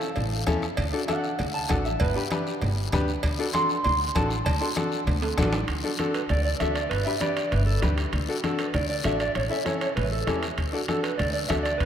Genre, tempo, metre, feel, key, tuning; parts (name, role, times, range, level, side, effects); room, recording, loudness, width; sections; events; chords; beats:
latin, cumbia; 196 BPM; 4/4; straight; D major; A4 = 438 Hz
mellow electric guitar; melody; 0.0-11.9 s; G4 to C6; -29 LUFS; right 2 dB; spring reverb
bright upright piano; accompaniment; 0.0-11.7 s; C#4 to B4; -30 LUFS; left 2 dB
guiro; percussion; 0.0-11.9 s; -38 LUFS; left 6 dB
upright bass; bass; 0.2-11.9 s; G1 to E2; -28 LUFS; equal
congas; percussion; 0.2-11.9 s; -33 LUFS; left 1 dB
cowbell and timbales; percussion; 0.2-11.9 s; -34 LUFS; right 4 dB
bombo; percussion; 0.5-5.7, 10.6-11.9 s; -30 LUFS; equal
moderate cathedral reverb, RT60 5.3 s; in a vast, echoing space; -23 LUFS; side -9 dB against mid
0.0-5.7 A section; 5.7-11.9 B section
clean electric guitar solo 0.0-5.7; drum fill 5.2-5.7
0.0 A; 0.8 D; 2.0 G; 3.2 D; 6.9 G; 8.1 D; 9.4 A; 10.6 D
0.17 0.48 | 0.78 1.09 1.40 1.70 | 2.01 2.32 2.62 2.93 | 3.24 3.54 3.85 4.15 | 4.46 4.76 5.07 5.38 | 5.68 5.99 6.29 6.60 | 6.91 7.21 7.52 7.83 | 8.13 8.44 8.74 9.05 | 9.36 9.66 9.97 10.28 | 10.58 10.89 11.19 11.50 | 11.80